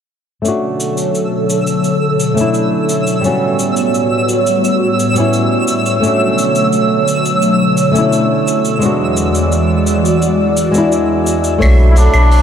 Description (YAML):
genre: sunset chillout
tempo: 86 BPM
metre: 4/4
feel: straight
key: B minor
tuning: A4 = 439 Hz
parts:
  - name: flamenco guitar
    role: accompaniment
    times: 0.4-12.4 s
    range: G3 to C#5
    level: -17 LUFS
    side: left 1 dB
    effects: auto-pan, low-pass filter, diffuse ambient delay
  - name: airy breathy pad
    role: sustained chords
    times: 0.5-12.4 s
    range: E2 to B5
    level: -14 LUFS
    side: equal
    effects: chorus, phaser
  - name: cabasa, hi-hat and claves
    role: drums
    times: 0.5-12.4 s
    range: none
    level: -22 LUFS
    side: equal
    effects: none
  - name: twinkling granular texture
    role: texture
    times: 1.3-11.6 s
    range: E6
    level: -21 LUFS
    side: right 1 dB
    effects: built-in reverb
  - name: round analog bass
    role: bass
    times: 11.6-12.4 s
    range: B1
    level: -8 LUFS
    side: equal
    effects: none
  - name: electronic kick drum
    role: drums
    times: 11.6-11.8 s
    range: none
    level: -18 LUFS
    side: equal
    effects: none
  - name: clear flugelhorn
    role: melody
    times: 11.9-12.4 s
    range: D4 to E4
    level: -16 LUFS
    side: left 2 dB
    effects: none
room: wet huge ambient reverb, RT60 8.3 s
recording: dreamy mix soaked in reverb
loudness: -11 LUFS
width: side -8 dB against mid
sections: 0.5-11.6 A section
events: filter sweep on nylon-string guitar 0.5-11.6; filter sweep on analog synth pad 0.5-11.6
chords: 0.5 Bm9; 3.2 A13; 6.0 Bm9; 8.8 E9; 11.6 Bm9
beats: | 0.45 1.15 1.85 2.54 | 3.24 3.94 4.64 5.33 | 6.03 6.73 7.43 8.12 | 8.82 9.52 10.22 10.92 | 11.61 12.31